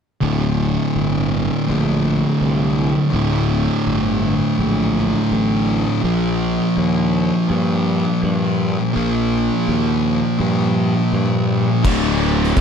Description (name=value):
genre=stoner and doom metal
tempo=82 BPM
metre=4/4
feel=swing 58% on 8ths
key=D minor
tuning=A4 = 438 Hz
part: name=fuzz guitar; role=riff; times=0.2-12.6 s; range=D2 to Bb3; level=-20 LUFS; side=right 9 dB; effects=distortion
part: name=thick fuzz guitar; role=riff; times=0.2-12.6 s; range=D2 to Bb3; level=-20 LUFS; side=left 10 dB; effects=distortion
part: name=fuzz fingered electric bass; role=bass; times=0.2-12.6 s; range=D1 to G2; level=-22 LUFS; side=equal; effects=overdrive, tube saturation
part: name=crunchy overdriven guitar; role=riff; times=11.8-12.6 s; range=D2 to F3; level=-22 LUFS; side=left 2 dB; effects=none
part: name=oversized low-tuned drum kit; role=drums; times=11.8-12.6 s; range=crash cymbal, hi-hat, kick drum, snare drum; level=-20 LUFS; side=equal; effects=none
room=little or no reverb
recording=none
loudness=-16 LUFS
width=side -7 dB against mid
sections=0.2-11.8 A section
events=none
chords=0.2 D5; 6.0 Bb5; 11.8 D5